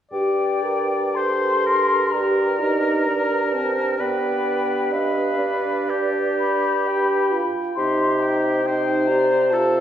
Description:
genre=classical, slow romantic movement for wind quintet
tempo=55-69 BPM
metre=4/4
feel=rubato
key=G minor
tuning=A4 = 438 Hz
part: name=mellow concert flute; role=melody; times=0.1-9.8 s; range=D5 to C6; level=-25 LUFS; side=left 4 dB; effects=none
part: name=warm oboe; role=second line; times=0.1-9.8 s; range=G4 to D5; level=-25 LUFS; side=left 1 dB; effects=none
part: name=clear French horn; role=accompaniment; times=0.1-9.8 s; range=B3 to Bb4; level=-25 LUFS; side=right 1 dB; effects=none
part: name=mellow bassoon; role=bass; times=0.1-9.8 s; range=G2 to C3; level=-23 LUFS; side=right 1 dB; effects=none
part: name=warm clarinet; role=accompaniment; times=2.1-9.8 s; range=Bb4 to G5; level=-28 LUFS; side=right 5 dB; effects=none
room=wet recital hall reverb, RT60 1.7 s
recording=heard from further back in the room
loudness=-18 LUFS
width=side -10 dB against mid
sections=0.1-9.8 A section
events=none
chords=0.1 Gm; 4.0 G7; 7.8 Cm

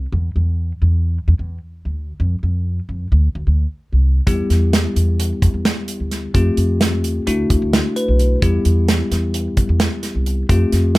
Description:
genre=progressive instrumental, band music in an uneven meter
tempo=260 BPM (eighths)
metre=9/8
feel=straight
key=E minor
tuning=A4 = 444 Hz
part: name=upright bass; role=bass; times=0.0-11.0 s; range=B1 to F2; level=-17 LUFS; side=equal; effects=none
part: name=bell-like tine electric piano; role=accompaniment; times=4.3-11.0 s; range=G3 to B4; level=-21 LUFS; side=left 2 dB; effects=plate reverb
part: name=natural country drum kit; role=drums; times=4.3-11.0 s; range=hi-hat, kick drum, snare drum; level=-18 LUFS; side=right 1 dB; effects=none
room=light reverb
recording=none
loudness=-15 LUFS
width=side -20 dB against mid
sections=0.0-11.0 A section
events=tine electric piano fill 7.7-8.4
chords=0.1 Dsus2; 2.2 N.C.; 3.1 Csus2; 4.3 Em; 6.3 Fadd9; 7.3 Dadd9; 8.4 Em

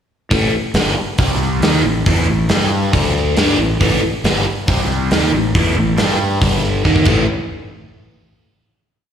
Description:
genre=hard rock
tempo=138 BPM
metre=4/4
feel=straight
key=unclear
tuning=A4 = 441 Hz
part: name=overdriven semi-hollow guitar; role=riff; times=0.3-7.2 s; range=G2 to G4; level=-18 LUFS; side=equal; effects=phaser, slapback echo
part: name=fuzz fingered electric bass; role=bass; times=0.3-7.3 s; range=G1 to G2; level=-19 LUFS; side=equal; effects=overdrive
part: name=gated 80s drum kit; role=drums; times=0.3-7.2 s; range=crash cymbal, hi-hat, kick drum, snare drum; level=-17 LUFS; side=equal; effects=none
room=light reverb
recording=live gig heard through the venue's PA, recital hall reverb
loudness=-13 LUFS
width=side -8 dB against mid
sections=0.3-7.3 riff; 7.3-9.0 final hit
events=drum fill 6.8-7.3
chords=0.3 A5; 1.2 C5; 1.6 A5; 2.5 G5; 2.9 D5; 3.4 A5; 4.7 C5; 5.1 A5; 6.0 G5; 6.8 D#5; 7.1 A5; 7.3 N.C.

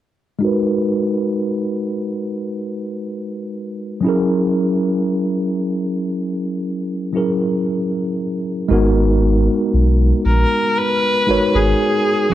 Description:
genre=contemporary R&B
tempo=58 BPM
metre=4/4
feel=straight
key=G# minor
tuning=A4 = 439 Hz
part: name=mellow tine electric piano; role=accompaniment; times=0.4-12.3 s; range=F#3 to C#5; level=-18 LUFS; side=equal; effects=medium stereo tremolo, low-pass filter
part: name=saturated sub bass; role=bass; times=8.7-12.3 s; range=G#1 to B1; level=-16 LUFS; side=equal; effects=none
part: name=clear viola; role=melody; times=10.3-12.3 s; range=G#4 to B4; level=-16 LUFS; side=left 1 dB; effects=none
room=light reverb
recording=worn, warbling old tape, cassette tape, warbly pitch drift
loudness=-16 LUFS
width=side -12 dB against mid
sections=0.4-8.7 A section; 8.7-12.3 B section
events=filter sweep on tine electric piano 0.4-8.7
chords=0.4 G#m7; 4.0 F#7; 8.7 G#m7

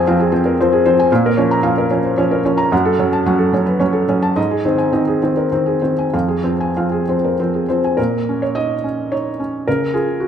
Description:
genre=neoclassical minimalist piano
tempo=96-116 BPM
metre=3/4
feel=rubato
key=unclear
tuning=A4 = 440 Hz
part: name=felt-muted upright piano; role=solo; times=0.0-10.3 s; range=F2 to Bb5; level=-14 LUFS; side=equal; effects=none
room=wet recital hall reverb, RT60 1.3 s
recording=none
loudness=-14 LUFS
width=side -8 dB against mid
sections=0.0-8.0 A section; 8.0-10.3 B section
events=none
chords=0.0 Fm; 1.1 Bbm; 2.7 Gbm; 4.4 Ab; 6.1 Fm; 8.0 Bbm; 9.7 Db

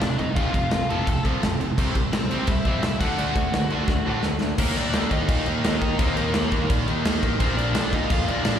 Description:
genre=punk rock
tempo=170 BPM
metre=4/4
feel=straight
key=unclear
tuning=A4 = 439 Hz
part: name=biting lead guitar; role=melody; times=0.0-8.6 s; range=Bb3 to A5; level=-30 LUFS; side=left 2 dB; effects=overdrive, slapback echo, tape echo
part: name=distorted electric guitar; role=riff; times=0.0-8.6 s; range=F2 to Eb4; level=-30 LUFS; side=left 12 dB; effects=distortion, slapback echo
part: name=distorted electric guitar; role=riff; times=0.0-8.6 s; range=F2 to Eb4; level=-28 LUFS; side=right 10 dB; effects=overdrive
part: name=overdriven picked electric bass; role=bass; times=0.0-8.6 s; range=F1 to Eb3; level=-28 LUFS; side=left 1 dB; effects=none
part: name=big rock drum kit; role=drums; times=0.0-8.5 s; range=crash cymbal, kick drum, snare drum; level=-24 LUFS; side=equal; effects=none
room=studio reverb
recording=live gig heard through the venue's PA, recital hall reverb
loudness=-20 LUFS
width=side -9 dB against mid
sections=0.0-4.6 A section; 4.6-8.6 B section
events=drum fill 3.9-4.6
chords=0.0 F; 1.8 C; 3.0 D; 4.6 Eb5; 7.4 Bb

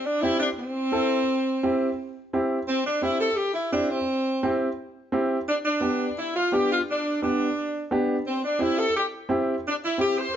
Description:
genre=latin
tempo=172 BPM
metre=4/4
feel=straight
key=C major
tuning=A4 = 444 Hz
part: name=warm saxophone section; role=melody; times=0.0-10.3 s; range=C4 to C5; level=-24 LUFS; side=equal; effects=none
part: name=warm upright piano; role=accompaniment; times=0.2-10.2 s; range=B3 to A4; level=-26 LUFS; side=right 1 dB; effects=none
room=moderate large studio reverb, RT60 1.1 s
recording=nothing above 7.6 kHz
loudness=-23 LUFS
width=side -9 dB against mid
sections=0.0-2.7 A section; 2.7-10.4 A section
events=none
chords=0.0 C; 5.5 G; 8.3 C

